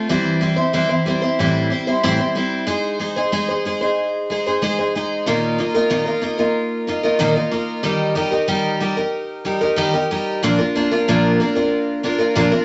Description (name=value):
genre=rock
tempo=93 BPM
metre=4/4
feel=straight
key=unclear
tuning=A4 = 437 Hz
part: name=picked twelve-string acoustic guitar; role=solo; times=0.0-12.6 s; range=A2 to C5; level=-19 LUFS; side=equal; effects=none
room=moderate studio ambience, RT60 0.5 s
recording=nothing above 7.8 kHz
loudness=-19 LUFS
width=mono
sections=0.0-7.8 A section; 7.8-12.6 B section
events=none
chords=0.1 C/E; 1.4 Am7; 2.7 Ab; 5.3 Ebsus2/Bb; 7.8 Eb; 10.4 Bb